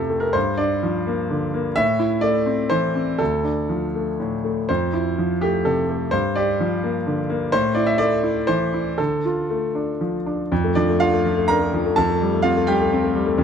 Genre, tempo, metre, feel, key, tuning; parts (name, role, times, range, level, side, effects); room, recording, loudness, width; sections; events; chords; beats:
neoclassical minimalist piano; 116-131 BPM; 3/4; rubato; F major; A4 = 444 Hz
clear grand piano; solo; 0.0-13.4 s; D2 to Bb5; -18 LUFS; equal
light reverb; close, detailed microphones; -18 LUFS; side -7 dB against mid
0.0-10.5 A section; 10.5-13.4 B section
0.4 Gm7; 1.8 Am; 3.2 Dm; 4.7 Fmaj7; 6.1 Gm7; 7.5 Am; 9.0 Dm; 10.5 Bbmaj7/F; 12.0 Fadd9
| 0.35 0.83 1.30 | 1.77 2.23 2.71 | 3.20 3.69 4.19 | 4.69 5.18 5.66 | 6.13 6.60 7.06 | 7.53 8.00 8.48 | 8.98 9.50 10.00 | 10.51 11.00 11.49 | 11.97 12.44 12.91 | 13.38